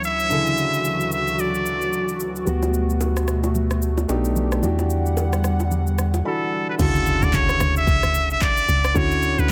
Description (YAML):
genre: amapiano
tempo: 111 BPM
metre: 4/4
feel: swing 58% on 16ths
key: D major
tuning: A4 = 439 Hz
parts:
  - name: trumpet with straight mute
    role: melody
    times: 0.0-2.2, 6.3-9.5 s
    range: A4 to E5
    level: -24 LUFS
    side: equal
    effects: digital delay
  - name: warm baby grand piano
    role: accompaniment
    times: 0.0-9.5 s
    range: B2 to B5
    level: -28 LUFS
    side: equal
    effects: none
  - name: airy breathy pad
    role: sustained chords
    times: 0.0-6.8 s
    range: D2 to F#5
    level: -30 LUFS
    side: equal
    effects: chorus
  - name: deep house drum kit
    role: drums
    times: 0.0-9.5 s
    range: crash cymbal, handclaps, kick drum, rim click, shaker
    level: -29 LUFS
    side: equal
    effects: none
  - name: round analog bass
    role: bass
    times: 2.5-6.2 s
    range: B1 to E2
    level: -24 LUFS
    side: equal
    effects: none
  - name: congas and bongos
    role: percussion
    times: 2.5-6.2 s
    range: none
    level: -32 LUFS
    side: equal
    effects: none
  - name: deep log drum bass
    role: bass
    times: 6.8-9.5 s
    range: B1 to D2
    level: -25 LUFS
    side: equal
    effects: none
  - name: impact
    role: sound effects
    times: 6.9-9.0 s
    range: none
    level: -32 LUFS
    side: equal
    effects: none
room: light reverb, digital ambience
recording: none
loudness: -21 LUFS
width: mono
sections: 0.0-6.8 A section; 6.8-9.5 B section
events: grand piano fill 6.0-6.8; break 6.3-6.8; drop 6.8-9.5; impact 6.8-9.0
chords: 0.0 Dmaj9; 2.5 Gmaj9/D; 4.1 B7alt; 4.6 Em9; 6.8 Dmaj9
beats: | 0.31 0.85 1.39 1.93 | 2.47 3.01 3.55 4.09 | 4.63 5.17 5.71 6.25 | 6.79 7.33 7.88 8.42 | 8.96 9.50